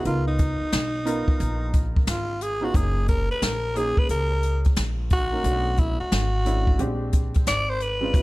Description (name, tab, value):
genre	hip hop, jazz-hop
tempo	89 BPM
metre	4/4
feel	swing 64% on 16ths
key	unclear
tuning	A4 = 436 Hz
part	growling alto saxophone	melody	0.0-8.2 s	D#4 to D5	-26 LUFS	equal	none
part	dark upright piano	accompaniment	0.0-8.2 s	G#3 to A#4	-31 LUFS	right 1 dB	none
part	upright bass	bass	0.1-8.2 s	F#1 to C#2	-26 LUFS	equal	none
part	jazz brush drum kit	drums	0.1-8.2 s	hi-hat, kick drum, snare drum	-23 LUFS	equal	none
room	studio reverb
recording	none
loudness	-21 LUFS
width	side -19 dB against mid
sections	0.0-8.2 A section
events	alto saxophone solo 0.0-8.2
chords	0.1 C#13; 2.7 F#69; 5.4 Bm9; 6.8 A#13